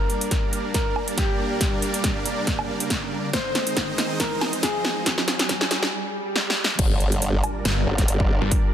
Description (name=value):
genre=heavy wobble dubstep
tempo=139 BPM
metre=4/4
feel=swing 54% on 16ths, half-time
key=G phrygian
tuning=A4 = 440 Hz
part: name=clear concert grand piano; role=melody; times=0.0-6.7 s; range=G4 to C5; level=-30 LUFS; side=left 2 dB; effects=digital delay
part: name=supersaw chords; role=sustained chords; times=0.0-8.7 s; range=G3 to Eb5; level=-29 LUFS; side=right 2 dB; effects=sidechain pumping, low-pass filter
part: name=riser, swell and impact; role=sound effects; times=0.0-8.5 s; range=none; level=-32 LUFS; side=right 1 dB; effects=none
part: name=big-room dance drum kit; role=drums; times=0.1-8.6 s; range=crash cymbal, hi-hat, snare drum, woodblock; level=-25 LUFS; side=equal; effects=none
part: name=electronic kick drum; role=drums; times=0.3-8.6 s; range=none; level=-25 LUFS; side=equal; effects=none
part: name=formant-sweep wobble bass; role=bass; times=6.8-8.4 s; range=G1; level=-23 LUFS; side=equal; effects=chorus, overdrive
part: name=snarling distorted saw bass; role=bass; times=7.7-8.5 s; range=G1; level=-23 LUFS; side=equal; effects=distortion, overdrive
room=light reverb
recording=dense, heavily limited modern master, high-pass filter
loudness=-21 LUFS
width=side -10 dB against mid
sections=0.0-6.8 A section; 6.8-8.7 B section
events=build-up 0.0-6.8; drum fill 0.0-5.9, 6.4-6.8; riser 0.0-5.9; filter sweep 0.0-6.8; break 5.9-6.8; swell 5.9-6.8; drop 6.8-8.7; impact 6.8-8.5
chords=0.0 Gm; 3.3 Ab; 6.8 Gm7